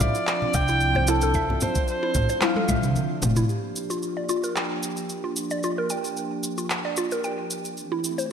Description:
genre	organic downtempo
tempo	112 BPM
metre	4/4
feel	swing 53% on 16ths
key	G dorian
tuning	A4 = 442 Hz
part	warm kamancheh	melody	0.0-2.9 s	F4 to G5	-26 LUFS	right 1 dB	digital delay
part	warm analog pad	sustained chords	0.0-8.3 s	E3 to G4	-32 LUFS	equal	chorus, sidechain pumping
part	mallet-like synth pluck	arpeggios	0.0-8.3 s	E4 to G5	-29 LUFS	equal	chorus, phaser, digital delay
part	upright bass	bass	0.0-3.4 s	F1 to C2	-26 LUFS	equal	none
part	electronic kick drum	drums	0.0-2.8 s	none	-27 LUFS	equal	none
part	organic electronic drum kit	drums	0.0-8.3 s	handclaps, shaker, toms	-28 LUFS	equal	none
part	congas	percussion	0.0-3.3 s	none	-32 LUFS	left 2 dB	none
part	bronze singing bowl	texture	0.0-8.3 s	G4 to D5	-42 LUFS	right 6 dB	none
room	wet lush hall reverb, RT60 2.1 s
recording	bright 1980s-style digital production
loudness	-22 LUFS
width	side -7 dB against mid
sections	0.0-3.5 A section; 3.5-8.3 B section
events	drum fill 2.4-3.5; filter sweep on synth pluck 3.5-8.3; filter sweep on analog synth pad 3.5-8.3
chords	0.0 Dm9; 3.5 Gm7; 7.8 Am7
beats	0.28 0.81 | 1.35 1.88 2.42 2.96 | 3.49 4.03 4.56 5.10 | 5.63 6.17 6.71 7.24 | 7.78 8.31

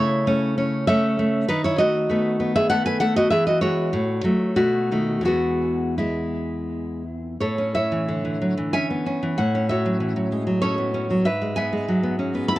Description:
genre	romantic piece for solo classical guitar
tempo	82-100 BPM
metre	3/4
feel	rubato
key	E major, A major from 7.4 s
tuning	A4 = 440 Hz
part	nylon-string guitar	solo	0.0-12.6 s	E2 to B5	-20 LUFS	equal	tape echo
room	light reverb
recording	dry, close 1970s-style studio recording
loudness	-20 LUFS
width	side -16 dB against mid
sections	0.0-7.4 A section; 7.4-12.6 B section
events	none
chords	0.0 A/C#; 1.5 B7/D#; 3.3 E; 3.9 F#m/A; 4.6 B7; 5.3 E; 7.4 A; 9.4 F#m/A; 11.3 E/G#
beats	0.27 0.88 | 1.48 2.08 2.70 | 3.32 3.93 4.57 | 5.27 5.99 6.70 | 7.42 8.09 8.74 | 9.38 10.01 10.63 | 11.27 11.89 12.50

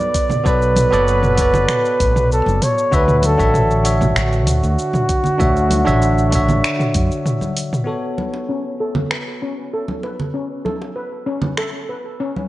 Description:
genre	sunset chillout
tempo	97 BPM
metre	4/4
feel	straight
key	B minor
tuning	A4 = 441 Hz
part	mellow flugelhorn	melody	0.0-7.2 s	F#4 to D5	-19 LUFS	equal	digital delay
part	bell-like tine electric piano	accompaniment	0.0-12.5 s	D3 to E5	-22 LUFS	equal	auto-pan, digital delay
part	deep house drum kit	drums	0.0-11.7 s	cabasa, finger snaps, hi-hat, toms	-22 LUFS	equal	studio ambience
part	electronic kick drum	drums	0.1-7.1 s	none	-20 LUFS	equal	studio ambience
part	congas and bongos	percussion	0.3-12.5 s	none	-25 LUFS	right 1 dB	none
part	mellow fretless electric bass	bass	0.5-7.1 s	F#1 to F#2	-18 LUFS	equal	analog chorus
part	steel pan	arpeggios	7.9-12.4 s	C#4 to B4	-25 LUFS	left 1 dB	low-pass filter, digital delay
room	moderate lush hall reverb, RT60 1.6 s, digital ambience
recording	worn, warbling old tape, cassette tape, warbly pitch drift, nothing above 11.0 kHz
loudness	-15 LUFS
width	side -16 dB against mid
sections	0.0-7.9 A section; 7.9-12.5 B section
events	filter sweep on steel pan 7.9-12.5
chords	0.0 Bm9; 2.9 Dmaj9; 7.9 Bsus2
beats	| 0.45 1.07 1.69 2.31 | 2.92 3.54 4.16 4.78 | 5.40 6.02 6.63 7.25 | 7.87 8.49 9.11 9.73 | 10.35 10.96 11.58 12.20

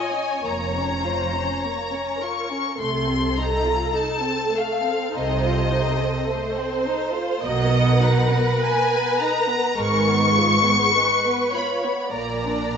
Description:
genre	classical, slow romantic movement for string orchestra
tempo	51 BPM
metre	4/4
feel	rubato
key	unclear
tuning	A4 = 440 Hz
part	rich studio violin section	melody	0.0-12.8 s	Eb5 to Db6	-24 LUFS	left 4 dB	none
part	dark symphonic violin section	second line	0.0-12.8 s	Ab3 to Db5	-26 LUFS	left 1 dB	none
part	warm symphonic viola section	accompaniment	0.0-12.8 s	Ab4 to Eb5	-27 LUFS	right 3 dB	none
part	rich symphonic cello section	bass	0.4-12.8 s	F2 to C3	-26 LUFS	right 3 dB	none
part	warm symphonic double bass section	bass	0.4-12.8 s	F1 to C2	-26 LUFS	right 2 dB	none
room	moderate scoring stage reverb, RT60 1.9 s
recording	nothing above 7.7 kHz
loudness	-19 LUFS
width	side -7 dB against mid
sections	0.0-12.8 A section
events	none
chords	0.0 Bbm; 2.8 F7/C; 7.4 Bmaj7; 9.8 Fdim/Ab; 12.1 Bb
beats	0.43 1.62 | 2.78 3.95 5.15 6.29 | 7.45 8.61 9.78 10.93 | 12.13

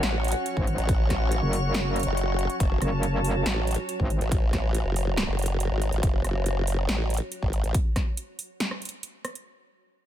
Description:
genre	heavy wobble dubstep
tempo	140 BPM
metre	4/4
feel	half-time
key	F# minor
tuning	A4 = 440 Hz
part	rich chamber string section	sustained chords	0.0-4.3 s	F#3 to A5	-34 LUFS	left 1 dB	sidechain pumping, low-pass filter
part	formant-sweep wobble bass	bass	0.0-7.7 s	F#1 to A1	-26 LUFS	equal	chorus, overdrive
part	big-room dance drum kit	drums	0.0-9.4 s	hi-hat, rim click, snare drum	-31 LUFS	equal	none
part	granular cloud pad	texture	0.0-6.0 s	F#4 to C#6	-33 LUFS	equal	built-in reverb, sidechain pumping
part	metallic wobble bass	bass	0.6-4.2 s	F#1 to G#1	-25 LUFS	equal	chorus, overdrive
part	electronic kick drum	drums	0.6-8.0 s	none	-25 LUFS	equal	none
room	digital ambience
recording	none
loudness	-23 LUFS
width	side -11 dB against mid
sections	0.0-9.5 A section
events	drop 0.0-9.5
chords	0.0 F#5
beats	0.03 0.46 | 0.89 1.32 1.75 2.17 | 2.60 3.03 3.46 3.89 | 4.32 4.75 5.17 5.60 | 6.03 6.46 6.89 7.32 | 7.75 8.17 8.60 9.03

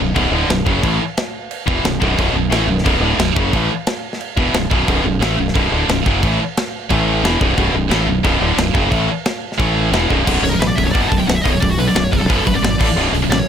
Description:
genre	heavy metal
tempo	178 BPM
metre	4/4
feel	straight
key	B minor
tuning	A4 = 440 Hz
part	heavy high-gain guitar	riff	0.0-13.5 s	B1 to A3	-19 LUFS	right 13 dB	distortion
part	tight distorted guitar	riff	0.0-13.5 s	B1 to A3	-20 LUFS	left 12 dB	distortion
part	growling fingered electric bass	bass	0.0-13.4 s	B0 to B1	-20 LUFS	equal	overdrive
part	tight metal drum kit	drums	0.2-13.4 s	crash cymbal, hi-hat, kick drum, snare drum	-20 LUFS	equal	none
part	high-gain lead guitar	melody	10.4-13.5 s	F#4 to A5	-21 LUFS	equal	distortion, tape echo
room	small room ambience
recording	none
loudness	-14 LUFS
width	side -8 dB against mid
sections	0.0-10.3 A section; 10.3-13.5 B section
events	drum fill 10.1; lead electric guitar solo 10.3-13.5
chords	0.0 Bm; 6.9 A5; 7.2 Bm; 9.6 A5; 9.9 B5; 12.8 A5; 13.0 B5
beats	0.15 0.49 | 0.82 1.16 1.50 1.83 | 2.17 2.51 2.85 3.19 | 3.52 3.86 4.20 4.53 | 4.87 5.21 5.55 5.88 | 6.22 6.56 6.89 7.23 | 7.57 7.91 8.24 8.58 | 8.92 9.25 9.59 9.93 | 10.27 10.60 10.94 11.28 | 11.62 11.95 12.29 12.63 | 12.97 13.30

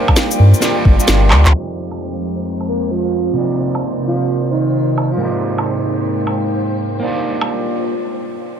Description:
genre	future garage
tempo	131 BPM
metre	4/4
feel	swing 65% on 16ths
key	unclear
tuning	A4 = 445 Hz
part	electric guitar at the edge of break-up	accompaniment	0.0-8.0 s	F2 to D5	-20 LUFS	right 3 dB	sidechain pumping, tape echo
part	warbly tape-like pad	sustained chords	0.0-8.0 s	C3 to G5	-22 LUFS	left 2 dB	chorus, built-in reverb, vintage 12-bit sampler grit, sidechain pumping
part	electronic kick drum	drums	0.1-1.0 s	none	-11 LUFS	equal	overdrive
part	electronic woodblock, snare drum, shaker and handclaps	drums	0.1-7.5 s	none	-18 LUFS	right 1 dB	overdrive
part	warm sub bass	bass	0.4-1.5 s	G1 to G2	-9 LUFS	equal	none
part	flickering grainy texture	texture	2.0-8.0 s	C5	-31 LUFS	right 3 dB	built-in reverb
part	airy dreamy lead	melody	2.7-5.3 s	Eb4 to Bb4	-22 LUFS	right 2 dB	chorus, digital delay
room	light reverb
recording	low-pass filter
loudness	-14 LUFS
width	side -8 dB against mid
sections	0.0-1.5 A section; 1.5-8.6 B section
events	drum fill 1.3; filter sweep 1.5-8.6; break 8.0-8.6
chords	0.0 Gm7; 1.5 Fm7; 3.4 Cm7; 5.2 Abmaj7; 7.0 Gm7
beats	0.17 0.62 1.08 | 1.54 2.00 2.46 2.91 | 3.37 3.83 4.29 4.75 | 5.20 5.66 6.12 6.58 | 7.04 7.49 7.95

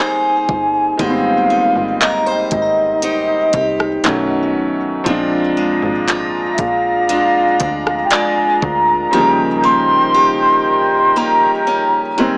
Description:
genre	contemporary R&B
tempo	59 BPM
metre	4/4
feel	straight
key	Ab major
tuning	A4 = 444 Hz
part	hollow clarinet-like synth lead	melody	0.0-12.4 s	Eb5 to C6	-17 LUFS	equal	chorus, digital delay
part	bright grand piano	accompaniment	0.0-12.4 s	Db3 to D4	-22 LUFS	equal	none
part	picked steel-string acoustic guitar	arpeggios	0.0-12.4 s	Bb2 to C5	-24 LUFS	equal	digital delay
part	glassy synth bell	texture	0.0-9.6 s	D5 to Bb5	-29 LUFS	equal	chorus, phaser, digital delay
part	slap-like FM bass	bass	0.5-9.1 s	G1 to D2	-31 LUFS	equal	none
part	trap drum kit	drums	0.5-8.9 s	handclaps, hi-hat, kick drum, rim click	-21 LUFS	equal	none
part	clear woodwind section	sustained chords	5.1-12.4 s	Eb4 to Bb5	-25 LUFS	equal	sidechain pumping
room	light reverb, small room ambience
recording	small speaker sound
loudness	-15 LUFS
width	mono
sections	0.0-12.4 A section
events	drums muted 9.1-12.4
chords	0.0 Abmaj7; 4.0 B9; 5.1 Bb7; 9.1 Eb7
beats	| 0.99 2.01 3.03 4.04 | 5.06 6.08 7.09 8.11 | 9.13 10.15 11.16 12.18

